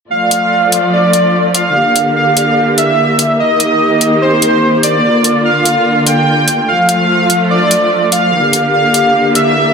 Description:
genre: heavy wobble dubstep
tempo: 146 BPM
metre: 4/4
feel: swing 54% on 16ths, half-time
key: D minor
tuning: A4 = 444 Hz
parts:
  - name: soft supersaw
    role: melody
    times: 0.1-9.7 s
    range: C5 to G5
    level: -11 LUFS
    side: right 1 dB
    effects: ping-pong delay
  - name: rich studio string section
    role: sustained chords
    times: 0.1-9.7 s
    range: D3 to D5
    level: -13 LUFS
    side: equal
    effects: low-pass filter
  - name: electronic hi-hat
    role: drums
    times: 0.3-9.4 s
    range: none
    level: -14 LUFS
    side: left 1 dB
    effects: none
room: moderate lush hall reverb, RT60 1.9 s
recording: none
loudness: -9 LUFS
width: side -5 dB against mid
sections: 0.1-9.7 A section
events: none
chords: 0.1 Dm; 1.8 Gm/D; 3.4 Eb; 5.0 Bb; 6.7 Dm; 8.3 Gm/D

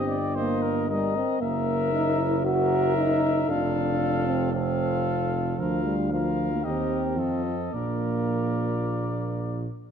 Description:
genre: classical, brass quintet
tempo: 114 BPM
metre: 4/4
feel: uneven beats, rubato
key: Bb major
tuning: A4 = 441 Hz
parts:
  - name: warm cornet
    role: melody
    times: 0.0-9.7 s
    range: D5 to F5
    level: -32 LUFS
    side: left 9 dB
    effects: none
  - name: warm trumpet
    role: second line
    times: 0.0-9.7 s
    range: A4 to Eb5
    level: -35 LUFS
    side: right 6 dB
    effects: none
  - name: clear French horn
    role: accompaniment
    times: 0.0-9.7 s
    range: F4 to Bb4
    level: -33 LUFS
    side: left 6 dB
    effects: none
  - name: mellow euphonium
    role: accompaniment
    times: 0.0-9.4 s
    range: F3 to Gb4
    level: -28 LUFS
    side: right 2 dB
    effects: none
  - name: mellow tuba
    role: bass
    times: 0.0-9.7 s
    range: F1 to F2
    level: -28 LUFS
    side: right 2 dB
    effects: none
room: moderate recital hall reverb, RT60 1.4 s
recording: dark, warm production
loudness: -23 LUFS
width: side -7 dB against mid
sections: 0.0-9.9 A section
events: none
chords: 0.0 Eb/G; 1.4 Gb7; 3.5 F; 5.6 Bb/D; 6.6 Eb; 7.2 F7; 7.7 Bb

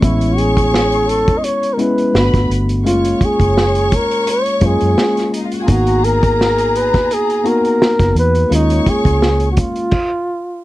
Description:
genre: lush 1970s-style soul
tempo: 85 BPM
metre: 4/4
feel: swing 54% on 16ths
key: G# dorian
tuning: A4 = 440 Hz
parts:
  - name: breathy flugelhorn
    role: melody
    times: 0.0-10.6 s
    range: D#4 to D#5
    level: -16 LUFS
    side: equal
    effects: none
  - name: warm studio string section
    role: second line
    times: 0.0-9.6 s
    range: D#4 to C#6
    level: -24 LUFS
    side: left 3 dB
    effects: none
  - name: tine electric piano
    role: accompaniment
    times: 0.0-9.9 s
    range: G#3 to F#4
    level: -19 LUFS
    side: left 2 dB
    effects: none
  - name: vintage muted fingered electric bass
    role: bass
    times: 0.0-9.6 s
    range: F#1 to F#2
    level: -17 LUFS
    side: equal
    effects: none
  - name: vintage drum kit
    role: drums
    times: 0.0-10.1 s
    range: crash cymbal, hi-hat, kick drum, snare drum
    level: -18 LUFS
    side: right 1 dB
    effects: none
room: little or no reverb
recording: dry, close 1970s-style studio recording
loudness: -12 LUFS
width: side -16 dB against mid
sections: 0.0-10.6 A section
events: stop 9.9-10.6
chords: 0.0 Amaj7; 2.1 Gmaj7; 2.9 F#maj7; 5.7 G#m9; 8.5 D#9sus4

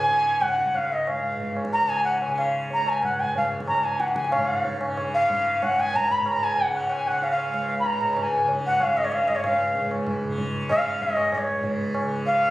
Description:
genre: indian classical, Hindustani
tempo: 187 BPM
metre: 4/4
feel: straight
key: Db raga khamaj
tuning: A4 = 440 Hz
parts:
  - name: bright reedy bansuri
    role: melody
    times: 0.0-12.5 s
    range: Db5 to Cb6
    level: -22 LUFS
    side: equal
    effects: none
  - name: tanpura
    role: drone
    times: 0.0-12.5 s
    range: Db2 to Db3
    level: -30 LUFS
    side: equal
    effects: none
  - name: tabla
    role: percussion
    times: 0.1-12.5 s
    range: none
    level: -32 LUFS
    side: equal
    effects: none
room: moderate recital hall reverb, RT60 1.5 s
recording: recorded on a phone in the room, studio reverb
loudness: -21 LUFS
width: side -16 dB against mid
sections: 0.0-4.3 A section; 4.3-12.5 B section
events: speeding up 0.0-12.5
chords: none

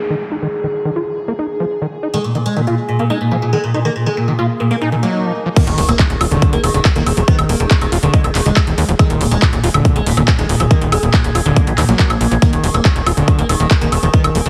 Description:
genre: psychedelic trance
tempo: 140 BPM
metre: 4/4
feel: straight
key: unclear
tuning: A4 = 440 Hz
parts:
  - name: overtone-sweeping drone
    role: sustained chords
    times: 0.0-14.5 s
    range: Ab4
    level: -28 LUFS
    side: equal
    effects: chorus, built-in reverb, sidechain pumping
  - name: downlifter, swell and impact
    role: sound effects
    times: 0.0-2.1, 5.0-7.3 s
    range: none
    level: -30 LUFS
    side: equal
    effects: none
  - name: overdriven acid bass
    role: riff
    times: 0.1-14.4 s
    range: D3 to F4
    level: -23 LUFS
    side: equal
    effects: distortion, cassette tape, sidechain pumping, tape echo
  - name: oud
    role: melody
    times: 2.1-14.5 s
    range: Bb2 to Cb4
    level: -21 LUFS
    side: equal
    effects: phaser, sidechain pumping, tape echo
  - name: resonant blip pluck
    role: second line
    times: 3.3-14.5 s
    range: Gb3 to Bb3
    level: -34 LUFS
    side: equal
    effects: none
  - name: big-room dance drum kit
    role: drums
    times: 5.6-14.5 s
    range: crash cymbal, handclaps, hi-hat, woodblock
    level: -23 LUFS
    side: equal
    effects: overdrive, low-pass filter on hats, studio reverb, low-pass filter on perc, low-pass filter on snare, low-pass filter on cymbals
  - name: electronic kick drum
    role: drums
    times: 5.6-14.2 s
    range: none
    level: -15 LUFS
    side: equal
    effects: overdrive, studio reverb
  - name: tight sequencer bass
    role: bass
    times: 5.7-14.5 s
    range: Eb1 to Eb2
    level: -19 LUFS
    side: equal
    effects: none
room: light reverb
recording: heavily compressed radio sound, multiband compression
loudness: -15 LUFS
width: mono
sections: 0.0-5.6 A section; 5.6-14.5 B section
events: filter sweep on acid bass 0.0-5.6; swell 5.0-5.6; drop 5.6-14.5; impact 5.6-7.3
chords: 0.0 Eb5

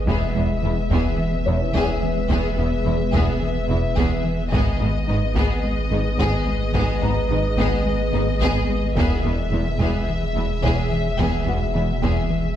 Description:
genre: cinematic, hybrid orchestral and electronic film score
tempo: 108 BPM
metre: 4/4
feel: straight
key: unclear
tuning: A4 = 439 Hz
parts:
  - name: dark studio violin section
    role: melody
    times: 0.0-12.6 s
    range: D#5 to E5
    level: -30 LUFS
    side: left 6 dB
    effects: none
  - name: dark French horn section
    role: sustained chords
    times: 0.0-12.6 s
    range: G#3 to B4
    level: -31 LUFS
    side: right 1 dB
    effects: none
  - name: swarming drone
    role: sustained chords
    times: 0.0-12.6 s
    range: B2 to E5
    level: -30 LUFS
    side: equal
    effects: built-in reverb
  - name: saturated sub bass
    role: bass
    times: 0.0-12.6 s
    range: E1 to G#1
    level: -26 LUFS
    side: equal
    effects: none
  - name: felt-muted upright piano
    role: texture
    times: 0.0-12.6 s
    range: A#3 to C#6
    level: -34 LUFS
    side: left 1 dB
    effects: tape echo
  - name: warm symphonic violin section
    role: second line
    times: 0.1-12.3 s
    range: B3 to G#4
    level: -30 LUFS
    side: left 3 dB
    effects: none
  - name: rich symphonic viola section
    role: accompaniment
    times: 0.1-12.3 s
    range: B3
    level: -31 LUFS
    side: right 1 dB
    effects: none
  - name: harp-like synth pluck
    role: arpeggios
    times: 0.1-12.2 s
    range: E3 to G#4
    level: -32 LUFS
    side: right 2 dB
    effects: none
  - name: rubbery square bass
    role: riff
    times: 0.1-12.5 s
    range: E2 to G#3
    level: -28 LUFS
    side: left 2 dB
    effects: none
  - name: clear symphonic double bass section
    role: bass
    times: 0.1-12.1 s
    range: E1 to G#1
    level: -28 LUFS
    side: right 3 dB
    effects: none
  - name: rich symphonic cello section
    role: bass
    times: 0.1-12.1 s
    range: E2 to G#2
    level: -28 LUFS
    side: right 2 dB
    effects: none
  - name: taiko ensemble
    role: drums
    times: 0.1-12.5 s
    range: none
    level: -28 LUFS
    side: equal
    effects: none
room: moderate recital hall reverb, RT60 1.7 s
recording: none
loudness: -19 LUFS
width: side -10 dB against mid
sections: 0.0-12.6 A section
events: none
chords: 0.1 E; 4.5 G#m; 9.0 E

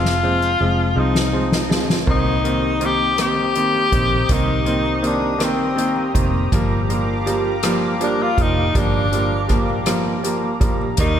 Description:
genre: six-eight pop ballad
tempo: 54 BPM (dotted quarters)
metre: 6/8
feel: straight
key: unclear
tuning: A4 = 440 Hz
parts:
  - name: clear tenor saxophone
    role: melody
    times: 0.0-11.2 s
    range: C4 to G4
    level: -21 LUFS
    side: left 2 dB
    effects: slapback echo, ping-pong delay
  - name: clear concert grand piano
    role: accompaniment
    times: 0.0-11.2 s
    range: Eb3 to C4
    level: -22 LUFS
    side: right 1 dB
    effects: slapback echo
  - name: fingerpicked steel-string acoustic guitar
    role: arpeggios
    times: 0.0-11.2 s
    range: F3 to G4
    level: -30 LUFS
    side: left 5 dB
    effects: ping-pong delay
  - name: vintage muted fingered electric bass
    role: bass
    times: 0.0-11.2 s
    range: F1 to Eb2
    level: -24 LUFS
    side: right 1 dB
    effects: none
  - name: soft-mallet drum kit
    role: drums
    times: 0.1-11.2 s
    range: crash cymbal, hi-hat, kick drum, rim click, snare drum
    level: -22 LUFS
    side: equal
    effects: none
  - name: chorused pulse-width pad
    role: sustained chords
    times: 2.1-11.2 s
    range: G4 to Eb6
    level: -27 LUFS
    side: right 1 dB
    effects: none
room: light reverb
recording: none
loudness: -16 LUFS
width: side -9 dB against mid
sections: 0.0-2.1 A section; 2.1-11.2 B section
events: drum fill 0.0-2.1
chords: 0.0 Fm; 2.1 Cm7; 6.5 Gm7

